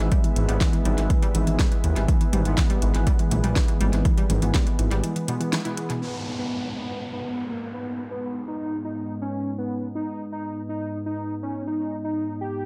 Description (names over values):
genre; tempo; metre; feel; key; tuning
melodic techno; 122 BPM; 4/4; straight; G# harmonic minor; A4 = 439 Hz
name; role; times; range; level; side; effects
warm analog pad; sustained chords; 0.0-12.7 s; G#2 to E5; -36 LUFS; equal; chorus, sidechain pumping
warbly dusty pluck; arpeggios; 0.0-5.9 s; B2 to E4; -32 LUFS; equal; chorus, sidechain pumping, analog delay
analog synth brass; stabs; 0.0-6.0 s; E3 to B3; -34 LUFS; equal; chorus, sidechain pumping, analog delay
dark detuned saw bass; bass; 0.0-5.0 s; G#1 to D#2; -25 LUFS; equal; sidechain pumping
deep house drum kit; drums; 0.1-6.0 s; hi-hat, snare drum, toms; -33 LUFS; equal; overdrive, studio reverb, analog delay
electronic kick drum; drums; 0.1-4.6 s; none; -25 LUFS; equal; overdrive, studio reverb
unison lead; melody; 6.0-12.7 s; A#3 to G4; -32 LUFS; equal; sidechain pumping, analog delay
downlifter; sound effects; 6.0-10.0 s; none; -40 LUFS; equal; none
room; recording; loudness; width
light reverb; echo-heavy mix; -25 LUFS; mono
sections
0.0-6.0 A section; 6.0-12.7 B section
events
break 5.0-6.0; band accent 5.5; filter sweep on analog synth lead 6.0-12.7; filter sweep on analog synth pad 6.0-12.7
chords
0.0 E/G#; 6.0 G#m